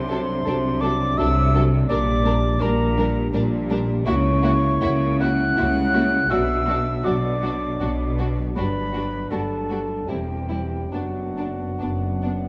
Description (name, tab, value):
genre	classical, slow romantic movement for symphony orchestra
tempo	68-86 BPM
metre	3/4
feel	rubato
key	B minor from 4.1 s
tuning	A4 = 440 Hz
part	concert flute	second line	0.0-12.5 s	F#5 to F#6	-29 LUFS	equal	none
part	warm clarinet	second line	0.0-12.5 s	F#4 to F#5	-33 LUFS	equal	none
part	mellow French horn section	sustained chords	0.0-12.5 s	F#3 to E4	-31 LUFS	equal	none
part	rich symphonic cello section	bass	0.0-12.5 s	E2 to C#3	-28 LUFS	equal	none
part	rich symphonic double bass section	bass	0.0-12.5 s	E1 to C#2	-28 LUFS	equal	none
part	dark symphonic violin section	melody	0.1-12.3 s	D4 to Bb4	-36 LUFS	equal	none
part	rich symphonic violin section	second line	0.1-12.3 s	C4 to E4	-37 LUFS	equal	none
part	dark chamber viola section	accompaniment	0.1-12.3 s	F#3 to B3	-32 LUFS	equal	none
room	moderate scoring stage reverb, RT60 2.0 s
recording	dark, warm production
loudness	-22 LUFS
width	mono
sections	0.0-12.5 A section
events	none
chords	0.0 D7/C; 1.9 Gm/Bb; 4.1 F#7/C#; 6.3 Bm; 8.6 Gmaj7; 10.1 C/E; 10.9 Bm/F#